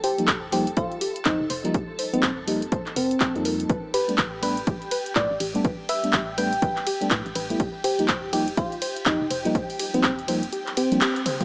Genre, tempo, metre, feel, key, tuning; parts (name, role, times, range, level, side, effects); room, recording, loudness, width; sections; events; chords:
deep house; 123 BPM; 4/4; swing 61% on 16ths; A4 = 440 Hz
soft struck synth lead; melody; 0.0-11.3 s; C4 to G5; -27 LUFS; equal; chorus, cassette tape, tape echo
soft round pluck; arpeggios; 0.0-11.3 s; G4 to G5; -32 LUFS; left 1 dB; chorus, sidechain pumping, tape echo
deep house drum kit; drums; 0.0-11.4 s; handclaps, hi-hat, ride cymbal, toms; -27 LUFS; equal
soft string machine; texture; 0.0-11.4 s; G4 to A5; -36 LUFS; equal; phaser, ensemble chorus
mellow FM electric piano; stabs; 0.2-11.4 s; F3 to F4; -27 LUFS; equal; chorus, phaser, vintage 12-bit sampler grit, sidechain pumping
organ-like FM bass; bass; 0.3-10.5 s; Eb1 to A2; -37 LUFS; equal; sidechain pumping
electronic kick drum; drums; 0.3-10.2 s; -27 LUFS; equal
light reverb; dry, gritty hardware recording, small speaker sound; -22 LUFS; side -28 dB against mid
0.0-11.4 A section
band accent 11.0; drum fill 11.3
0.0 F9sus4; 3.7 A9sus4; 7.6 F9sus4